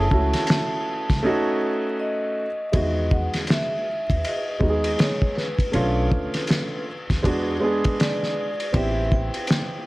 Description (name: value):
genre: hip hop, jazz-hop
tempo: 80 BPM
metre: 4/4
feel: swing 62% on 16ths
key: E major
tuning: A4 = 440 Hz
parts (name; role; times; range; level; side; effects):
- vibraphone with medium hard mallets; melody; 0.0-9.9 s; B4 to A5; -28 LUFS; equal; none
- dark baby grand piano; accompaniment; 0.0-9.9 s; D#3 to G#4; -25 LUFS; right 1 dB; none
- upright bass; bass; 0.0-9.3 s; A1 to E2; -26 LUFS; equal; none
- cloth-damped thuddy drum kit; drums; 0.1-9.7 s; hi-hat, kick drum, ride cymbal, snare drum; -24 LUFS; equal; none
room: light reverb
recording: vinyl crackle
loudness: -20 LUFS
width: side -20 dB against mid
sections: 0.0-2.7 A section; 2.7-9.9 B section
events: vibraphone solo 0.0-2.7; break 1.2-2.7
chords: 0.0 F#m7; 1.2 F#m6/A; 2.7 Emaj7; 5.7 Bm7b5; 7.2 E7; 8.7 Am7